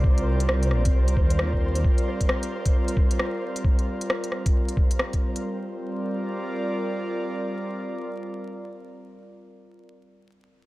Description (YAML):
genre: future garage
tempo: 133 BPM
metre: 4/4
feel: swing 62% on 16ths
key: unclear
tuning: A4 = 439 Hz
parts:
  - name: airy breathy pad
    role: sustained chords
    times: 0.0-9.8 s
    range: G3 to D5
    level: -30 LUFS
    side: equal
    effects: chorus, sidechain pumping
  - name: dark detuned saw bass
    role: bass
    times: 0.0-1.8 s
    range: Bb1 to Eb2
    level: -23 LUFS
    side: equal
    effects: sidechain pumping
  - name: electronic kick drum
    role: drums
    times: 0.0-5.2 s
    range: none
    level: -22 LUFS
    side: equal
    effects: small room ambience
  - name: flickering grainy texture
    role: texture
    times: 0.0-5.5 s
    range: C5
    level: -36 LUFS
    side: right 1 dB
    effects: built-in reverb
  - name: organic electronic drum kit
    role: drums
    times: 0.2-5.4 s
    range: hi-hat, rim click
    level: -28 LUFS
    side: equal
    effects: overdrive, small room ambience
room: little or no reverb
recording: dry, gritty hardware recording, transformer saturation, vinyl crackle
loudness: -22 LUFS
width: side -18 dB against mid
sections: 0.0-5.4 A section; 5.4-9.1 B section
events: none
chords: 0.0 Cm7; 5.4 C5